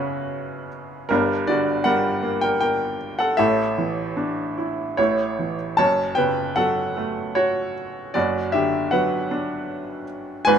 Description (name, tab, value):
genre	classical, lyrical solo piano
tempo	77 BPM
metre	3/4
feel	rubato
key	unclear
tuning	A4 = 441 Hz
part	bright upright piano	solo	0.0-10.6 s	F#1 to A5	-20 LUFS	equal	none
room	moderate studio reverb, RT60 0.6 s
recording	none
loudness	-20 LUFS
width	side -8 dB against mid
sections	0.0-10.6 A section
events	none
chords	0.0 Bsus2/F#; 1.1 Gm; 3.4 Asus4; 5.0 A; 5.8 F#m; 8.1 Bm/F#